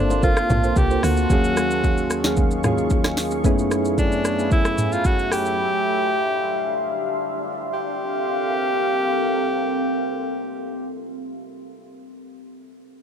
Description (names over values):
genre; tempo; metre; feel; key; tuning
amapiano; 112 BPM; 4/4; straight; unclear; A4 = 439 Hz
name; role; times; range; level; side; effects
edgy alto saxophone; melody; 0.0-10.9 s; D4 to G4; -24 LUFS; equal; slapback echo, plate reverb
soft electric-piano-like synth keys; accompaniment; 0.0-5.6 s; Eb2 to F5; -23 LUFS; left 1 dB; chorus, plate reverb
deep dark ambient pad; sustained chords; 0.0-10.9 s; F#3 to Db6; -26 LUFS; equal; chorus, built-in reverb, sidechain pumping, plate reverb
buzzing marimba with medium mallets; stabs; 0.0-1.0 s; F4 to C5; -28 LUFS; right 7 dB; slapback echo, plate reverb
woody log drum bass; bass; 0.0-1.3 s; G1 to D2; -22 LUFS; equal; none
afro-pop drum kit; drums; 0.1-5.6 s; hi-hat, kick drum, rim click, shaker, snare drum, toms; -21 LUFS; equal; none
bongos and congas; percussion; 0.1-3.4 s; none; -32 LUFS; left 4 dB; none
room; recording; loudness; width
light reverb; none; -19 LUFS; side -8 dB against mid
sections
0.0-7.7 A section; 7.7-12.0 B section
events
drop 0.0-7.7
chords
0.0 Gm11; 1.3 Ebm11; 3.4 F#m11; 5.6 Dm11; 7.7 Gm11